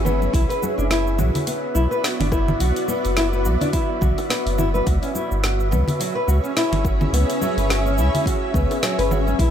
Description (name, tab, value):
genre	organic downtempo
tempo	106 BPM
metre	4/4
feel	swing 56% on 16ths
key	unclear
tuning	A4 = 441 Hz
part	granular cloud pad	sustained chords	0.0-9.5 s	B3 to E5	-26 LUFS	equal	built-in reverb, sidechain pumping
part	nylon-string guitar	arpeggios	0.0-9.5 s	F#3 to B4	-24 LUFS	left 1 dB	ping-pong delay
part	warm sub bass	bass	0.0-9.5 s	F#1 to C#2	-20 LUFS	equal	sidechain pumping
part	wind-like tuned noise texture	texture	0.0-9.5 s	E5	-32 LUFS	right 1 dB	built-in reverb
part	deep house drum kit	drums	0.1-9.5 s	congas, hi-hat, shaker, snare drum	-27 LUFS	right 2 dB	studio reverb
part	congas and bongos	percussion	0.2-9.4 s	none	-28 LUFS	left 2 dB	none
part	electronic kick drum	drums	0.3-9.5 s	none	-22 LUFS	equal	studio reverb
room	digital ambience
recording	none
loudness	-18 LUFS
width	side -9 dB against mid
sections	0.0-9.5 A section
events	none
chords	0.3 Bm; 4.9 C#m7b5